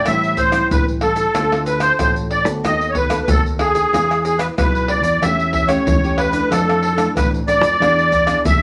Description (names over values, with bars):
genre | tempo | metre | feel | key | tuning
samba and choro | 93 BPM | 4/4 | straight | A minor | A4 = 440 Hz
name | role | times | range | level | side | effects
musette accordion | melody | 0.0-8.6 s | G#4 to E5 | -19 LUFS | equal | none
nylon-string guitar | accompaniment | 0.0-8.6 s | F2 to A4 | -27 LUFS | equal | none
fingered electric bass | bass | 0.0-8.6 s | A1 to F2 | -26 LUFS | equal | none
egg shaker, surdo, pandeiro and tamborim | percussion | 0.1-8.6 s | none | -23 LUFS | equal | none
room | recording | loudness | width
wet studio reverb, RT60 0.6 s | vinyl crackle | -17 LUFS | mono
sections
0.1-8.6 A section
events
none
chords
0.1 Am7; 1.4 Dm7; 2.6 B7/D#; 3.9 E; 5.2 A7/E; 6.5 Dmadd9/F; 7.8 E7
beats
| 0.06 0.71 1.35 2.00 | 2.65 3.29 3.94 4.58 | 5.23 5.87 6.52 7.16 | 7.81 8.45